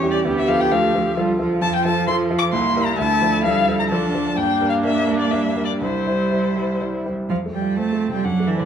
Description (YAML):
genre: quick classical-period movement for piano quartet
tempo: 130 BPM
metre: 3/4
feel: rubato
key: F major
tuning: A4 = 437 Hz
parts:
  - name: rich violin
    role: melody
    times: 0.0-8.7 s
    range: C5 to D6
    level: -22 LUFS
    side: left 4 dB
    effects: none
  - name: clear cello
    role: second line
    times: 0.0-8.7 s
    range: D3 to C#4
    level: -23 LUFS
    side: right 6 dB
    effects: none
  - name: clear baby grand piano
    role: accompaniment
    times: 0.0-8.7 s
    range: C2 to C5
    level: -23 LUFS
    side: left 1 dB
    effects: none
  - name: clear viola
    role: accompaniment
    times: 0.0-8.7 s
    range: C4 to G4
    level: -26 LUFS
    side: right 3 dB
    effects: none
room: moderate recital hall reverb, RT60 1.7 s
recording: dark, warm production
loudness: -17 LUFS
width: side -8 dB against mid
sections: 0.0-7.3 A section; 7.3-8.7 B section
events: none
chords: 0.3 Dm; 1.6 F; 2.5 C7; 3.0 Dm; 4.4 Gm; 5.8 C; 7.3 F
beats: | 0.25 0.71 1.17 | 1.62 2.08 2.53 | 2.98 3.44 3.90 | 4.37 4.83 5.31 | 5.81 6.31 6.81 | 7.30 7.77 8.24